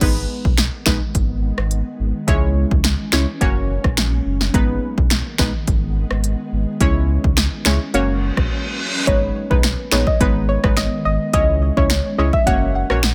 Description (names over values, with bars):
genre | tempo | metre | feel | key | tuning
dancehall | 106 BPM | 4/4 | straight | G# minor | A4 = 441 Hz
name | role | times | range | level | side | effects
synth brass stab | accompaniment | 0.0-13.0 s | G#3 to C#5 | -25 LUFS | equal | chorus
ethereal airy pad | sustained chords | 0.8-13.1 s | D#3 to C#4 | -31 LUFS | equal | ensemble chorus, built-in reverb, sidechain pumping
sub bass with octave | bass | 0.0-13.1 s | F#1 to C#2 | -22 LUFS | equal | none
deep house drum kit | drums | 0.0-13.1 s | crash cymbal, finger snaps, hi-hat, kick drum, rim click, snare drum | -21 LUFS | equal | none
reverse cymbal | sound effects | 8.2-9.1 s | none | -27 LUFS | equal | none
soft round pluck | melody | 9.1-12.9 s | B4 to F#5 | -24 LUFS | equal | chorus, digital delay
room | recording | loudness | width
digital ambience | none | -18 LUFS | mono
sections
0.0-9.1 A section; 9.1-13.1 B section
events
reverse cymbal 8.2-9.1; break 8.5-9.1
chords
0.0 G#m; 2.3 C#m; 3.4 F#; 4.5 G#m; 6.8 C#m; 7.9 F#; 9.1 G#m; 11.3 C#m; 12.5 F#